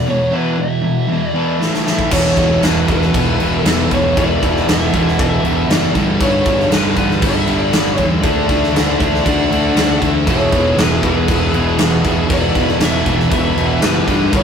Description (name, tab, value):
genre	hard rock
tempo	118 BPM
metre	4/4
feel	straight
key	unclear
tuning	A4 = 440 Hz
part	lead guitar through a small cranked amp	melody	0.0-14.4 s	B4 to F#5	-20 LUFS	equal	overdrive
part	cranked stack guitar	riff	0.0-14.4 s	E2 to D4	-22 LUFS	left 5 dB	overdrive
part	distorted electric guitar	riff	0.0-14.4 s	E2 to D4	-25 LUFS	right 1 dB	none
part	sludgy distorted guitar	riff	0.0-14.4 s	E2 to D4	-19 LUFS	right 2 dB	overdrive
part	big rock drum kit	drums	1.6-14.4 s	crash cymbal, kick drum, snare drum	-17 LUFS	equal	none
part	fuzz fingered electric bass	bass	2.1-14.4 s	E1 to E2	-21 LUFS	equal	overdrive
part	dark smooth lead guitar	second line	9.2-14.4 s	G4 to D5	-24 LUFS	right 1 dB	overdrive
room	moderate studio reverb, RT60 0.6 s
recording	rough rehearsal-room recording, warm saturation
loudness	-12 LUFS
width	side -7 dB against mid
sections	0.0-2.1 A section; 2.1-14.4 B section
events	break 0.1-2.1; drum fill 1.6-2.1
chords	0.0 E5; 1.6 A5; 2.1 E5; 5.9 G5; 8.2 D; 10.3 E